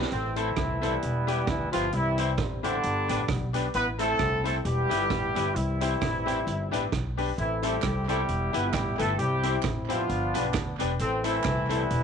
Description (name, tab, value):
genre	ska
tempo	132 BPM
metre	4/4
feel	swing 57% on 8ths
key	A minor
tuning	A4 = 440 Hz
part	electric guitar at the edge of break-up	accompaniment	0.0-11.8 s	B3 to A4	-37 LUFS	right 12 dB	none
part	bright upright piano	stabs	0.0-11.8 s	D4 to C5	-33 LUFS	left 12 dB	none
part	upright bass	bass	0.0-12.0 s	E1 to D2	-31 LUFS	equal	none
part	street-band drum kit	drums	0.0-12.0 s	hi-hat, kick drum, rim click, snare drum	-33 LUFS	right 4 dB	none
part	mellow horn section	melody	0.1-12.0 s	D3 to B4	-28 LUFS	equal	none
part	group handclap	percussion	7.8-11.6 s	none	-42 LUFS	right 14 dB	none
room	small room reverb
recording	1960s-style stereo with parts hard left and right, nothing above 10.3 kHz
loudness	-25 LUFS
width	side -7 dB against mid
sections	0.1-12.0 A section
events	none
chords	0.1 Am; 1.0 Em; 1.9 C; 2.8 G; 3.7 Am; 4.7 Em; 5.6 C; 6.5 G; 7.4 Am; 8.3 Em; 9.2 C; 10.1 G; 11.0 Am